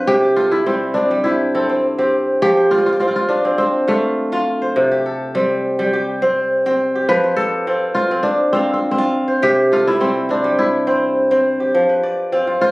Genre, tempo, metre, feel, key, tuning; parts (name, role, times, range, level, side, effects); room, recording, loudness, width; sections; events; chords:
west african traditional; 103 BPM; 4/4; straight; F lydian; A4 = 444 Hz
kora; melody; 0.0-12.7 s; A3 to B4; -17 LUFS; equal
kora; arpeggios; 0.0-12.7 s; C3 to F5; -17 LUFS; equal
moderate studio reverb, RT60 0.5 s; recorded on a phone in the room, studio reverb, compression; -14 LUFS; side -21 dB against mid
0.0-2.4 A section; 2.4-11.7 A section
0.1 C; 2.4 F; 4.8 C5; 7.1 F; 9.4 C; 11.7 F5